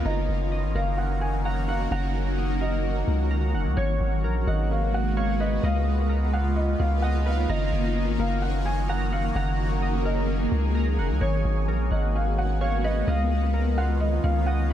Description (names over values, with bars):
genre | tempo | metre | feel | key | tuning
hip hop | 129 BPM | 4/4 | half-time | F# major | A4 = 438 Hz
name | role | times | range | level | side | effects
felt-muted upright piano | melody | 0.0-14.7 s | C#5 to G#5 | -32 LUFS | equal | low-pass filter, digital delay
shimmering ambient pad | sustained chords | 0.0-14.7 s | C#3 to G#4 | -29 LUFS | equal | chorus, built-in reverb, phaser
glassy digital keys | arpeggios | 0.0-14.7 s | E#4 to A#5 | -35 LUFS | right 2 dB | chorus, tremolo, low-pass filter, digital delay
long sustained 808-style bass | bass | 0.0-14.7 s | E#1 to C#2 | -24 LUFS | equal | none
room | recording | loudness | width
light reverb | none | -22 LUFS | side -11 dB against mid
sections
0.0-3.8 A section; 3.8-14.7 B section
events
none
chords
0.1 F#6; 3.8 G#m11; 5.6 C#13; 7.5 F#6; 11.2 G#m11; 13.1 C#13